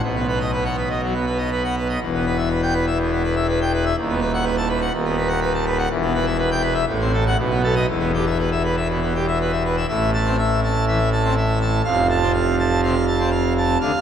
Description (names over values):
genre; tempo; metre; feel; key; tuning
classical, organ toccata; 122 BPM; 4/4; straight; E minor, A minor from 9.9 s; A4 = 440 Hz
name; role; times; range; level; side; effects
pipe organ, full organ; solo; 0.0-14.0 s; D#1 to A5; -18 LUFS; equal; none
room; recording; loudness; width
wet cathedral reverb, RT60 6.0 s; none; -18 LUFS; side -8 dB against mid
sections
0.0-9.9 A section; 9.9-14.0 B section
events
none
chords
0.0 B; 2.0 Em; 4.0 B7/D#; 5.9 Em; 6.9 F#dim/A; 7.4 B7; 7.9 Em; 9.9 Am; 11.9 F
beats
| 0.03 0.52 1.02 1.52 | 2.01 2.51 3.00 3.48 | 3.97 4.46 4.94 5.42 | 5.91 6.39 6.88 7.38 | 7.88 8.38 8.89 9.39 | 9.89 10.38 10.87 11.36 | 11.85 12.34 12.83 13.32 | 13.81